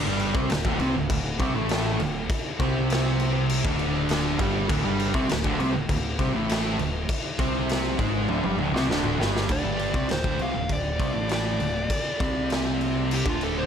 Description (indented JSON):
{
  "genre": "stoner and doom metal",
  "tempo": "100 BPM",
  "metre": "4/4",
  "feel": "straight",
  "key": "D minor from 9.5 s",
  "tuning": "A4 = 440 Hz",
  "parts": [
    { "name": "overdriven electric guitar", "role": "riff", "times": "0.0-9.5 s", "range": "D2 to C4", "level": "-32 LUFS", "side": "left 1 dB", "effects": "none" },
    { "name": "thick fuzz guitar", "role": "riff", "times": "0.0-13.7 s", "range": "D2 to C4", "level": "-30 LUFS", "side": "left 9 dB", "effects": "distortion" },
    { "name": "thick fuzz guitar", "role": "riff", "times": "0.0-13.7 s", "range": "D2 to C4", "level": "-28 LUFS", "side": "right 7 dB", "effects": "distortion" },
    { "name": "growling picked electric bass", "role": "bass", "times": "0.0-13.7 s", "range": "D1 to C2", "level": "-31 LUFS", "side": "equal", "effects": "overdrive, tube saturation" },
    { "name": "raw garage drum kit", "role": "drums", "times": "0.2-13.5 s", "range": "crash cymbal, kick drum, snare drum, toms", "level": "-28 LUFS", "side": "left 1 dB", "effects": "none" },
    { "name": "fuzz lead guitar", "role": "melody", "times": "9.5-13.7 s", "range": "F4 to F5", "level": "-30 LUFS", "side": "equal", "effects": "distortion, tape echo" }
  ],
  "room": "light reverb, small room ambience",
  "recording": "none",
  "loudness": "-22 LUFS",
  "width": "side -8 dB against mid",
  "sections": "0.0-9.5 A section; 9.5-13.7 B section",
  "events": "drum fill 8.3-9.5; lead electric guitar solo 9.5-13.7",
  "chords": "0.0 D5"
}